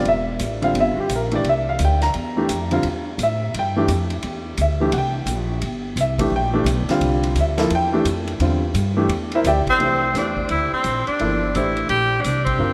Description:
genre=modal jazz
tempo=172 BPM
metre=4/4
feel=swing 64% on 8ths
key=C mixolydian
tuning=A4 = 439 Hz
part: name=clear upright piano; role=accompaniment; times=0.0-12.7 s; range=D3 to Bb5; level=-23 LUFS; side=equal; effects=none
part: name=upright bass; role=bass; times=0.0-12.7 s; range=E1 to A2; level=-26 LUFS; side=equal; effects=none
part: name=vintage drum kit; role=drums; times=0.1-12.5 s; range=hi-hat, kick drum, ride cymbal, snare drum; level=-34 LUFS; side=equal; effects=none
part: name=clear tenor saxophone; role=melody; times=9.7-12.7 s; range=C4 to G4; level=-22 LUFS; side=equal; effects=none
room=wet cathedral reverb, RT60 5.2 s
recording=in a vast, echoing space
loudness=-20 LUFS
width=mono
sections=0.0-9.8 A section; 9.8-12.7 B section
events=band accent 12.4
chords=0.0 C9

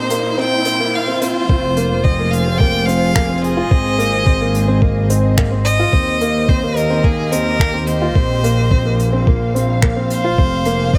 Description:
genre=piano and strings electronica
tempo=108 BPM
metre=4/4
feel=straight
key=F minor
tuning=A4 = 438 Hz
part: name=clear violin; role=melody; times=0.0-11.0 s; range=Ab4 to G5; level=-23 LUFS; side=equal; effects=none
part: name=warm studio string section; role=sustained chords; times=0.0-11.0 s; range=Bb2 to F5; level=-26 LUFS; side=equal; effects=sidechain pumping
part: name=felt-muted upright piano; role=riff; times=0.0-11.0 s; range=Bb3 to F4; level=-23 LUFS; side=equal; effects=none
part: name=riser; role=sound effects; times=0.0-1.5 s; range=none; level=-26 LUFS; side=equal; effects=none
part: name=jazz brush drum kit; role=drums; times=0.1-10.8 s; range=finger snaps, hi-hat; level=-28 LUFS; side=equal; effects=high-pass filter on hats, high-pass filter on snare, high-pass filter on room
part: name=warm symphonic double bass section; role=bass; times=1.5-11.0 s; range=F1 to Eb2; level=-20 LUFS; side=equal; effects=tube saturation, sidechain pumping
part: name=electronic kick drum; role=drums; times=1.5-11.0 s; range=none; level=-17 LUFS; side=equal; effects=none
room=light reverb, small room ambience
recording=none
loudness=-16 LUFS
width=mono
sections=0.0-1.5 A section; 1.5-11.0 B section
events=build-up 0.0-1.5; riser 0.0-1.5; filter sweep on string section 0.0-1.5; drop 1.5-11.0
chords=0.0 Bbsus2; 1.5 Fm; 3.7 Ab; 5.9 Eb; 8.2 Bbsus2; 10.4 Fm

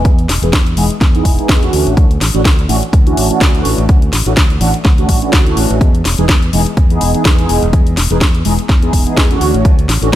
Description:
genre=filtered disco house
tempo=125 BPM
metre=4/4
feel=swing 56% on 16ths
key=E major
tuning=A4 = 440 Hz
part: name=mellow synth brass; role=accompaniment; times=0.0-10.1 s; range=E3 to G#4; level=-16 LUFS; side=right 1 dB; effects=chorus, phaser, cassette tape, sidechain pumping, low-pass filter
part: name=modern bright fingered electric bass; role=bass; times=0.0-10.2 s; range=E1 to E2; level=-16 LUFS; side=equal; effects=sidechain pumping, low-pass filter
part: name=electronic kick drum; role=drums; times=0.1-10.2 s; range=none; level=-11 LUFS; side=equal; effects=overdrive, studio reverb
part: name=house drum kit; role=drums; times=0.1-10.2 s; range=hi-hat, snare drum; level=-17 LUFS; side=left 1 dB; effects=overdrive, sidechain pumping on hats, studio reverb
room=digital ambience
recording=none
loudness=-9 LUFS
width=side -13 dB against mid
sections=0.0-10.2 A section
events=filter sweep 0.0-10.2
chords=0.0 Emaj7; 1.7 Dmaj9; 5.8 Emaj7; 9.4 Dmaj9

